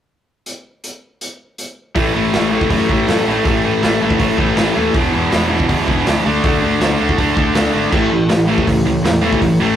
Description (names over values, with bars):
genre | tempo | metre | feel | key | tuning
punk rock | 161 BPM | 4/4 | straight | unclear | A4 = 442 Hz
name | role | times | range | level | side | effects
raw garage drum kit | drums | 0.5-9.5 s | crash cymbal, hi-hat, kick drum, snare drum | -19 LUFS | equal | none
raw garage guitar | riff | 1.9-9.8 s | E2 to D4 | -17 LUFS | left 4 dB | overdrive
tight distorted guitar | riff | 2.0-9.8 s | E2 to D4 | -18 LUFS | right 5 dB | distortion
fuzz picked electric bass | bass | 2.0-9.8 s | E1 to F#2 | -24 LUFS | equal | overdrive
room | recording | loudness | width
light reverb | rough rehearsal-room recording, tube saturation | -13 LUFS | side -10 dB against mid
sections
0.5-2.0 A section; 2.0-7.9 B section; 7.9-9.8 C section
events
none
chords
0.5 N.C.; 2.0 A5; 4.9 E5; 6.3 D5; 7.9 A